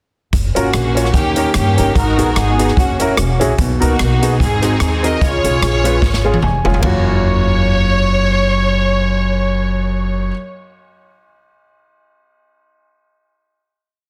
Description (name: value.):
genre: uptempo gospel.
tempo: 148 BPM.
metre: 4/4.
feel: swing 57% on 8ths.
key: F# major.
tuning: A4 = 440 Hz.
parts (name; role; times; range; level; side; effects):
upright bass; bass; 0.3-10.3 s; E1 to G2; -20 LUFS; equal; none.
swinging big-band drum kit; drums; 0.3-6.9 s; hi-hat, kick drum, ride cymbal, rim click, snare drum, toms; -21 LUFS; equal; soft clipping on snare.
warm studio string section; melody; 0.6-10.3 s; A#3 to D#5; -21 LUFS; equal; slapback echo.
clear grand piano; accompaniment; 0.6-10.3 s; F#2 to G#5; -21 LUFS; equal; none.
room: light reverb, small room ambience.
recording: dense, heavily limited modern master.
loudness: -15 LUFS.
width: mono.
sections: 0.3-6.8 breakdown; 6.8-10.0 final chord.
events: drum fill 6.0-6.8; grand piano fill 6.2-6.8.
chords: 0.3 F#maj7; 1.1 D#7; 2.0 G#m7; 2.8 F#7; 3.6 Bmaj7; 4.4 G#7; 5.2 C#; 6.8 F#maj7.